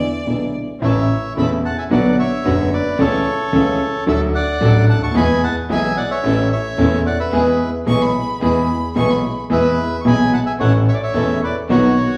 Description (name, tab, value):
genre	tango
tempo	110 BPM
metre	4/4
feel	rubato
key	A major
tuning	A4 = 440 Hz
part	rich violin	second line	0.0-0.5, 7.9-9.4 s	D5 to C#6	-27 LUFS	equal	none
part	warm concert grand piano	accompaniment	0.3-11.9 s	E1 to A4	-18 LUFS	equal	none
part	dark studio string section	stabs	0.3-11.9 s	B3 to B4	-28 LUFS	equal	none
part	bandoneon	melody	0.8-12.2 s	F#4 to C#6	-24 LUFS	equal	none
room	wet large studio reverb, RT60 1.3 s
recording	heard from further back in the room, small room ambience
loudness	-17 LUFS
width	mono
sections	0.8-12.2 A section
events	none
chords	0.0 E7; 0.8 A; 1.9 Bm; 3.0 A/C#; 4.1 D; 5.2 E; 6.2 A; 7.3 E; 10.6 A